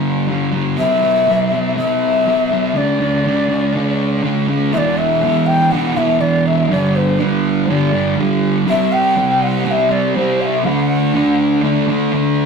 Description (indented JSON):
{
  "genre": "rock",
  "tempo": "122 BPM",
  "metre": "4/4",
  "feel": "straight",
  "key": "D mixolydian",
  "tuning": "A4 = 435 Hz",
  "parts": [
    { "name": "fuzz guitar", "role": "riff", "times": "0.0-12.5 s", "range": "E2 to D4", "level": "-15 LUFS", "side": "right 1 dB", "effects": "distortion" },
    { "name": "breathy bright long shakuhachi", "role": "melody", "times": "0.8-11.6 s", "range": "B4 to G5", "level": "-17 LUFS", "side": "left 2 dB", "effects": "none" }
  ],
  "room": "wet studio reverb, RT60 0.6 s",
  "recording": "rough rehearsal-room recording, tube saturation",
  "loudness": "-13 LUFS",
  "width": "side -5 dB against mid",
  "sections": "0.0-4.7 A section; 4.7-12.5 B section",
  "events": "none",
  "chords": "0.0 G5; 0.8 C; 2.8 D5; 4.7 E5; 6.7 G; 8.7 C5; 10.6 D"
}